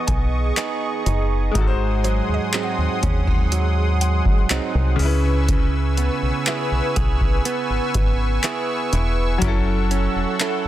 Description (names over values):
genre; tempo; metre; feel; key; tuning
contemporary R&B; 61 BPM; 4/4; straight; unclear; A4 = 441 Hz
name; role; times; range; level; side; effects
bright grand piano; accompaniment; 0.0-10.7 s; C#3 to B#4; -28 LUFS; left 6 dB; none
warm analog pad; sustained chords; 0.0-10.7 s; G#4 to E6; -26 LUFS; equal; chorus, tremolo
direct-recorded clean electric guitar; arpeggios; 0.0-10.7 s; G#2 to A4; -26 LUFS; right 7 dB; none
metallic FM bass; bass; 0.1-10.7 s; E1 to D#2; -21 LUFS; equal; none
booming analog drum machine; drums; 0.1-10.6 s; handclaps, hi-hat, kick drum; -22 LUFS; equal; overdrive
mallet-like synth pluck; texture; 0.1-10.7 s; A4 to G#5; -35 LUFS; right 1 dB; chorus, digital delay
room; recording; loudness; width
little or no reverb; dense, heavily limited modern master; -18 LUFS; side -13 dB against mid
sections
0.0-10.7 A section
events
none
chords
0.0 Emaj7; 1.6 G#7; 5.0 C#m7; 9.4 F#m7